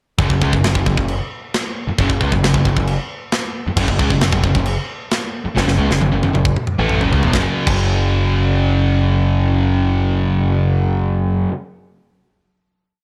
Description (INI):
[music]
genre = heavy metal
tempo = 134 BPM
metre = 4/4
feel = straight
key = F# minor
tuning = A4 = 440 Hz
[part]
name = sludgy distorted guitar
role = riff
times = 0.2-11.5 s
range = E2 to A3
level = -20 LUFS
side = equal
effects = overdrive
[part]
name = growling picked electric bass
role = bass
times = 0.2-11.4 s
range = E1 to C#2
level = -21 LUFS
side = equal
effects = overdrive
[part]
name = tight metal drum kit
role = drums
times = 0.2-7.8 s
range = china cymbal, crash cymbal, kick drum, snare drum, toms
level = -22 LUFS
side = equal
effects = none
[sound]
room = studio reverb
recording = dark, warm production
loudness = -17 LUFS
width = mono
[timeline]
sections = 0.2-7.3 riff; 7.3-10.9 final chord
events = drum fill 5.6-7.3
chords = 0.2 F#5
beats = | 0.19 0.64 1.08 1.53 | 1.98 2.43 2.88 3.32 | 3.77 4.21 4.66 5.11 | 5.55 6.00 6.45 6.89 | 7.34 7.79 8.24 8.69 | 9.13 9.58 10.03 10.48